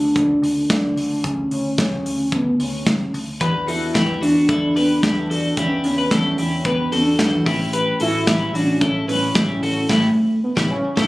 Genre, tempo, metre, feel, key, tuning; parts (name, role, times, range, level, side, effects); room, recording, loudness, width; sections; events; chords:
jangly indie pop; 111 BPM; 4/4; straight; D major; A4 = 440 Hz
warbly nostalgic lead; melody; 0.0-11.1 s; A3 to E4; -20 LUFS; equal; chorus
vintage muted picked electric bass; bass; 0.0-11.1 s; A1 to E2; -28 LUFS; equal
modern studio drum kit; drums; 0.2-11.1 s; crash cymbal, hi-hat, kick drum, snare drum; -23 LUFS; equal
picked steel-string acoustic guitar; accompaniment; 3.4-11.1 s; A2 to G4; -26 LUFS; right 1 dB
twelve-string electric guitar; arpeggios; 3.4-11.1 s; D4 to B4; -23 LUFS; left 2 dB; harmonic tremolo
wet small room reverb, RT60 0.5 s; recorded on a phone in the room, club reverb, compression; -17 LUFS; side -19 dB against mid
0.0-11.1 A section
band accent 9.9-11.1
0.0 Dmaj7(no3); 3.4 Em7; 7.5 A7